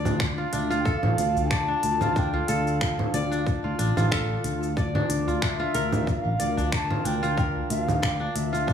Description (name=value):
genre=organic downtempo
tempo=92 BPM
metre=4/4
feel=swing 55% on 16ths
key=D minor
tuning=A4 = 441 Hz
part: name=airy breathy pad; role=sustained chords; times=0.0-8.7 s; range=D3 to Bb4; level=-33 LUFS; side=equal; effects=chorus, sidechain pumping
part: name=kora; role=arpeggios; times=0.0-8.7 s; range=D4 to D5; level=-30 LUFS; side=right 1 dB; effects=digital delay
part: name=sustaining fretless electric bass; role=bass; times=0.0-8.7 s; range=A1 to D2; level=-28 LUFS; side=left 1 dB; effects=analog chorus, sidechain pumping
part: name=bronze singing bowl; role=texture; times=0.0-8.7 s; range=A5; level=-48 LUFS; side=left 1 dB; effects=none
part: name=organic electronic drum kit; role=drums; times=0.1-8.7 s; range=cabasa, congas, finger snaps, hi-hat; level=-30 LUFS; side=right 1 dB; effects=overdrive
part: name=udu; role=percussion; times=0.1-8.0 s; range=none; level=-33 LUFS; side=equal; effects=none
part: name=electronic kick drum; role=drums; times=0.2-8.7 s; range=none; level=-27 LUFS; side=equal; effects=overdrive
part: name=bright reedy bansuri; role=melody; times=0.5-8.7 s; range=D5 to Bb5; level=-30 LUFS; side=equal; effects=digital delay
room=light reverb, small room ambience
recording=studio reverb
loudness=-22 LUFS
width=side -8 dB against mid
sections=0.0-8.7 A section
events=none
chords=0.0 Dm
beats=0.20 0.86 1.51 | 2.16 2.81 3.46 4.12 | 4.77 5.42 6.07 6.73 | 7.38 8.03 8.68